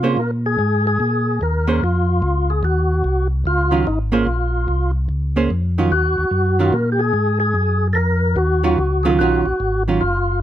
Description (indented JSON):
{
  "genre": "soul jazz organ trio",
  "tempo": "146 BPM",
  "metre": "4/4",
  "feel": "swing 65% on 8ths",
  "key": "unclear",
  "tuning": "A4 = 444 Hz",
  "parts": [
    { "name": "percussive tonewheel organ", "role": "melody", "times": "0.0-10.4 s", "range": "Eb4 to Bb4", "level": "-20 LUFS", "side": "left 1 dB", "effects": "overdrive, chorus vibrato, slow rotary speaker" },
    { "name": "archtop guitar, miked and amplified", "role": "accompaniment", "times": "0.0-10.0 s", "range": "Eb3 to C5", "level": "-19 LUFS", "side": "right 4 dB", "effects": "none" },
    { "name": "mellow tonewheel organ", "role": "bass", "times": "0.0-10.4 s", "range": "Gb1 to C3", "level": "-19 LUFS", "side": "equal", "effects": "slow rotary speaker" }
  ],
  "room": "little or no reverb",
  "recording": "close, detailed microphones",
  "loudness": "-16 LUFS",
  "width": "side -12 dB against mid",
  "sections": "0.0-10.4 A section",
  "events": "none",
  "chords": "0.0 Bbm9; 2.6 Ebm9; 4.3 Bbmadd9; 5.9 Ebm9"
}